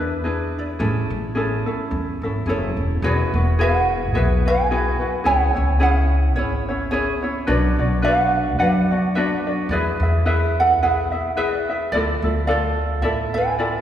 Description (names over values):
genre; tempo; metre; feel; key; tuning
Hawaiian; 108 BPM; 4/4; swing 56% on 8ths; unclear; A4 = 440 Hz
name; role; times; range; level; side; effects
ukulele; melody; 0.0-13.8 s; E4 to G#5; -23 LUFS; right 2 dB; none
ukulele; accompaniment; 0.0-13.8 s; C#4 to E5; -23 LUFS; left 2 dB; none
upright bass; bass; 0.0-13.7 s; E1 to F#2; -21 LUFS; equal; none
room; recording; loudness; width
wet church reverb, RT60 2.7 s; recorded in a church or concert hall, small room ambience; -18 LUFS; side -10 dB against mid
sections
0.0-3.0 A section; 3.0-13.8 B section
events
none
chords
0.0 E7; 0.8 Amaj7; 3.0 Eadd9; 5.3 C#m; 7.5 Bm; 9.7 E; 11.9 Dmadd9